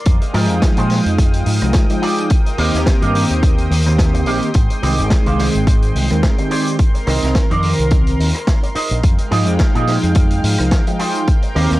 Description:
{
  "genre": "nu-disco, nu disco",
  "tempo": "107 BPM",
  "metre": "4/4",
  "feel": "swing 55% on 16ths",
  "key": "unclear",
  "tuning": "A4 = 443 Hz",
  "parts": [
    { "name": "lush unison pad", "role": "sustained chords", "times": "0.0-11.8 s", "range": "Ab3 to Eb6", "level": "-25 LUFS", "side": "right 1 dB", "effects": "chorus, sidechain pumping" },
    { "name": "fingered electric bass with an envelope filter", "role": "bass", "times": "0.1-11.8 s", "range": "Ab1 to Bb2", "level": "-18 LUFS", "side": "equal", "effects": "tube saturation, sidechain pumping" },
    { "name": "electronic kick drum", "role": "drums", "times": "0.1-11.4 s", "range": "none", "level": "-14 LUFS", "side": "equal", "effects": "overdrive" },
    { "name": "vintage drum kit", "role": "drums", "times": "0.1-11.8 s", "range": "hi-hat, rim click, snare drum", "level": "-24 LUFS", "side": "equal", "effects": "none" },
    { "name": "electric guitar with an envelope filter", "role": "riff", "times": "0.2-11.8 s", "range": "Eb4 to F5", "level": "-24 LUFS", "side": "right 2 dB", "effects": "lush chorus, tape echo" },
    { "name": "mellow synth brass", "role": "accompaniment", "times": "0.3-11.8 s", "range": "Eb3 to G5", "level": "-20 LUFS", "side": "equal", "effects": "chorus, sidechain pumping, tape echo" }
  ],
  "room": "small room reverb",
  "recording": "dry, gritty hardware recording",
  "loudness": "-13 LUFS",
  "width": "side -17 dB against mid",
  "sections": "0.1-11.8 A section",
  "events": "drop 0.1-11.8",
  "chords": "0.1 Fm9; 2.3 Eb6; 4.5 Abmaj7; 6.8 Cm7; 9.0 Fm9; 11.3 Eb6"
}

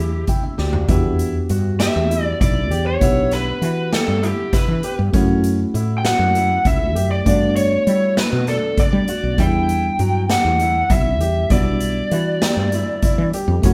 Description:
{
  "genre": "progressive instrumental, band music in an uneven meter",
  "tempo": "198 BPM (eighths)",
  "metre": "7/8",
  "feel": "straight",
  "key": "E dorian",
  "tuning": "A4 = 440 Hz",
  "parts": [
    { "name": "lead guitar through a small cranked amp", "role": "melody", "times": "0.0-13.3 s", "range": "G4 to G5", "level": "-23 LUFS", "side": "equal", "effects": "overdrive" },
    { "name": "bell-like tine electric piano", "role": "accompaniment", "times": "0.0-13.7 s", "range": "G3 to G5", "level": "-28 LUFS", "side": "equal", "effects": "phaser" },
    { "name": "clear baby grand piano", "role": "arpeggios", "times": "0.0-13.7 s", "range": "F#3 to G4", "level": "-30 LUFS", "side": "equal", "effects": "none" },
    { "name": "woody fretless electric bass", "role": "bass", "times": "0.0-13.7 s", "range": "B1 to G3", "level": "-23 LUFS", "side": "equal", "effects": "none" },
    { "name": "street-band drum kit", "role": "drums", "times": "0.3-13.7 s", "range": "hi-hat, kick drum, snare drum, toms", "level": "-23 LUFS", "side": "equal", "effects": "none" }
  ],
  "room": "moderate studio reverb, RT60 0.9 s",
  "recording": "band playing live in one room",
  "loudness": "-18 LUFS",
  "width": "mono",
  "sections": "0.9-13.7 A section",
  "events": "tine electric piano fill 0.0-0.9; drum fill 0.6-0.9",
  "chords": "0.0 Em7; 5.1 F#m7; 7.3 Gmaj7; 9.4 Em7"
}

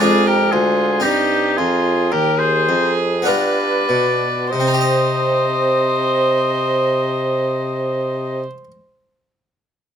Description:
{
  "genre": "classical, baroque-style sonata movement with continuo",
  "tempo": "47-59 BPM",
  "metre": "3/4",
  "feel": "straight",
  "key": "C minor",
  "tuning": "A4 = 440 Hz",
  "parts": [
    { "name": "warm oboe", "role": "melody", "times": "0.0-8.4 s", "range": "G4 to Eb5", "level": "-21 LUFS", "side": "left 5 dB", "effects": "none" },
    { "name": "warm violin", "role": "second line", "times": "0.0-8.4 s", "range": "Eb4 to C5", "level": "-21 LUFS", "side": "right 5 dB", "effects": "none" },
    { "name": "harpsichord", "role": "accompaniment", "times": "0.0-8.7 s", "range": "D2 to Eb5", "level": "-22 LUFS", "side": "left 2 dB", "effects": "none" },
    { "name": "mellow bassoon", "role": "bass", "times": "0.0-8.4 s", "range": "D2 to C3", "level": "-20 LUFS", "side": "right 1 dB", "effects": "none" }
  ],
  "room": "light reverb",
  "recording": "close, detailed microphones",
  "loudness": "-15 LUFS",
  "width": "side -8 dB against mid",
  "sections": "0.0-4.5 A section; 4.5-8.4 B section",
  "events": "slowing down 0.0-4.5",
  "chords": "0.0 Ddim/F; 1.0 Cm; 3.3 G7; 4.5 Cm"
}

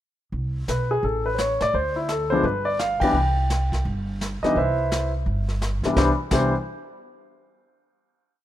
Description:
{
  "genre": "jazz piano trio",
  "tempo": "170 BPM",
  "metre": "4/4",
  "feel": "swing 63% on 8ths",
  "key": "C major",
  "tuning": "A4 = 441 Hz",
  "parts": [
    { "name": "upright bass", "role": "bass", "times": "0.3-6.5 s", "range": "G1 to A2", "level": "-25 LUFS", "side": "right 1 dB", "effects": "none" },
    { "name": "vintage brush drum kit", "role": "drums", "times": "0.3-6.4 s", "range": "brushed snare drum, crash cymbal, hi-hat, kick drum, ride cymbal, snare drum", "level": "-28 LUFS", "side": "equal", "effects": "none" },
    { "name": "warm concert grand piano", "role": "melody", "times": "0.7-6.5 s", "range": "C2 to G5", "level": "-22 LUFS", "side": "left 1 dB", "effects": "none" }
  ],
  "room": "light reverb, small room ambience",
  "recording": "rough home demo mix",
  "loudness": "-21 LUFS",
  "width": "side -12 dB against mid",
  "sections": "0.3-6.0 A section; 6.0-7.4 final chord",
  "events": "band accent 3.0",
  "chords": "0.3 N.C.; 1.0 A; 1.7 D5; 2.4 G; 3.1 Cmaj7; 6.0 Cmaj9"
}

